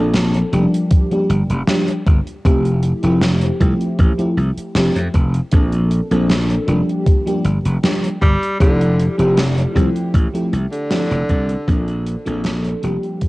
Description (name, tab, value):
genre	vaporwave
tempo	78 BPM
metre	4/4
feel	straight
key	F major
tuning	A4 = 440 Hz
part	FM electric piano with soft pad layer	accompaniment	0.0-13.3 s	F3 to A4	-20 LUFS	equal	tremolo, analog chorus, cassette tape, tape echo
part	slap bass	bass	0.0-13.0 s	F1 to F2	-18 LUFS	equal	tube saturation
part	gated 80s drum kit	drums	0.1-13.3 s	hi-hat, snare drum	-21 LUFS	equal	vintage 12-bit sampler grit, cassette tape
part	electronic kick drum	drums	0.9-13.3 s	none	-14 LUFS	equal	vintage 12-bit sampler grit, cassette tape
part	clear tenor saxophone	melody	8.2-11.8 s	D3 to G3	-23 LUFS	equal	cassette tape, tape echo
room	light reverb, studio reverb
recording	home recording on cassette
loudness	-14 LUFS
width	side -20 dB against mid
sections	0.0-13.3 A section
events	fade-out 9.6-13.3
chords	0.0 Bbmaj9; 0.9 Gm7; 2.4 Fmaj9; 5.5 Bbmaj9; 7.1 Gm7; 8.6 Fmaj9; 11.7 Bbmaj9